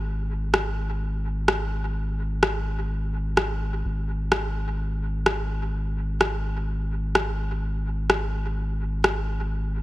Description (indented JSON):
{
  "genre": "dub techno",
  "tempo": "127 BPM",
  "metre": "4/4",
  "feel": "swing 53% on 16ths",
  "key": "unclear",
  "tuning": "A4 = 440 Hz",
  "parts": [
    { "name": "soft dub sub bass", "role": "bass", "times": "0.0-9.8 s", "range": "G#1", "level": "-27 LUFS", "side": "equal", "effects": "none" },
    { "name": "electronic rim click", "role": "drums", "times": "0.5-9.1 s", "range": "none", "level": "-24 LUFS", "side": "equal", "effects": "dub echo" }
  ],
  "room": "light reverb",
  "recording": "heavily compressed radio sound",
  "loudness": "-24 LUFS",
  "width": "side -17 dB against mid",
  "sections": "0.0-9.8 A section",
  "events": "none",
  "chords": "none",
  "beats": "| 0.07 0.54 1.01 1.48 | 1.96 2.43 2.90 3.37 | 3.84 4.32 4.79 5.26 | 5.73 6.21 6.68 7.15 | 7.62 8.10 8.57 9.04 | 9.51"
}